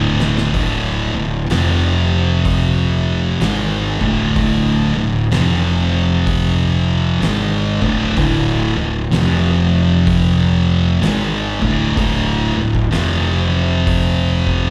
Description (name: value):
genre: stoner and doom metal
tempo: 63 BPM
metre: 4/4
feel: swing 63% on 8ths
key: D phrygian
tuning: A4 = 438 Hz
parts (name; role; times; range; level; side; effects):
- thick fuzz guitar; riff; 0.0-14.7 s; D2 to G#3; -18 LUFS; equal; distortion
- fuzz fingered electric bass; bass; 0.0-14.7 s; D1 to G#1; -21 LUFS; equal; overdrive
- oversized low-tuned drum kit; drums; 0.2-14.6 s; hi-hat, kick drum, snare drum; -26 LUFS; equal; none
room: moderate club reverb, RT60 0.5 s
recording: live gig heard through the venue's PA, club reverb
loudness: -16 LUFS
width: mono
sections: 0.5-14.7 A section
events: drum fill 0.0-0.5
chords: 0.0 D5; 1.5 F5; 3.4 D5; 5.3 F5; 7.2 D5; 9.1 F5; 11.0 D5; 12.9 F5